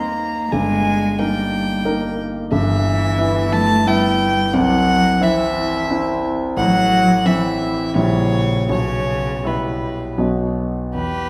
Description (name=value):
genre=classical, slow romantic movement for piano trio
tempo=73-91 BPM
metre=3/4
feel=rubato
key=E minor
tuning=A4 = 438 Hz
part: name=rich violin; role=melody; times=0.0-11.3 s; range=B4 to Bb5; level=-24 LUFS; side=equal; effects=none
part: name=warm cello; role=second line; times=0.0-11.3 s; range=B2 to G4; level=-24 LUFS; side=equal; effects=none
part: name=dark concert grand piano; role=accompaniment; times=0.0-11.3 s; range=G1 to E5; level=-21 LUFS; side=equal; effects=none
room=wet recital hall reverb, RT60 1.4 s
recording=recorded in a church or concert hall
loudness=-18 LUFS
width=mono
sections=0.0-11.0 A section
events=none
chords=0.0 Eb5; 0.5 Eb/G; 2.5 Em/G; 4.6 C; 6.6 Am; 8.0 A#dim7; 8.7 Em/B; 10.2 B